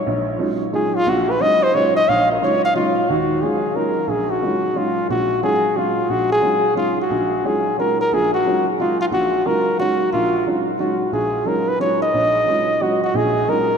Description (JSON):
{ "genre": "jazz", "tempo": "179 BPM", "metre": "3/4", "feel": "swing 64% on 8ths", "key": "Eb minor", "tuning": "A4 = 442 Hz", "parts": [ { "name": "trumpet with bucket mute", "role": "melody", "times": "0.0-13.8 s", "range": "F4 to F5", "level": "-17 LUFS", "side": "equal", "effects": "none" }, { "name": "dark upright piano", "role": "accompaniment", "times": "0.1-13.7 s", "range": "Bb1 to F4", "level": "-22 LUFS", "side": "right 2 dB", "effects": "none" } ], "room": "wet cathedral reverb, RT60 5.6 s", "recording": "in a vast, echoing space", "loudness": "-16 LUFS", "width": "side -6 dB against mid", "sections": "0.0-3.1 A section; 3.1-13.8 B section", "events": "muted trumpet solo 0.0-3.1", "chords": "0.0 Ebm11" }